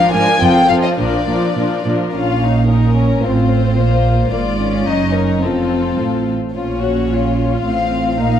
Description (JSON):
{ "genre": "quick classical-period movement for string orchestra", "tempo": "108 BPM", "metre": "2/4", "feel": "rubato", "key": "Bb minor", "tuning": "A4 = 441 Hz", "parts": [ { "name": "warm chamber violin section", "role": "melody", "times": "0.0-8.4 s", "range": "A4 to Ab5", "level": "-20 LUFS", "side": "left 4 dB", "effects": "none" }, { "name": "warm chamber violin section", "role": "second line", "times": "0.0-8.4 s", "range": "Db4 to Bb4", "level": "-21 LUFS", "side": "left 4 dB", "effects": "none" }, { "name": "warm chamber viola section", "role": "accompaniment", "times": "0.0-8.4 s", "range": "F3 to Eb4", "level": "-20 LUFS", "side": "equal", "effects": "none" }, { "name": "dark studio double bass section", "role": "bass", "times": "0.0-8.4 s", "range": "F1 to Bb1", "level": "-21 LUFS", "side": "right 3 dB", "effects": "none" }, { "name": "warm chamber cello section", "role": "bass", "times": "0.1-8.4 s", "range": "F2 to Bb2", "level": "-19 LUFS", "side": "right 3 dB", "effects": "none" } ], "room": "moderate scoring stage reverb, RT60 1.6 s", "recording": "dark, warm production", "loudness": "-13 LUFS", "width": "side -9 dB against mid", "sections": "0.0-2.1 A section; 2.1-8.4 B section", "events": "none", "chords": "0.4 F; 1.0 Bb; 2.1 Bbm; 3.2 F/A; 3.8 Bb5; 4.3 Bb7/Ab; 4.9 Ebm/Gb; 5.4 F; 6.5 Bbm; 7.6 F/A" }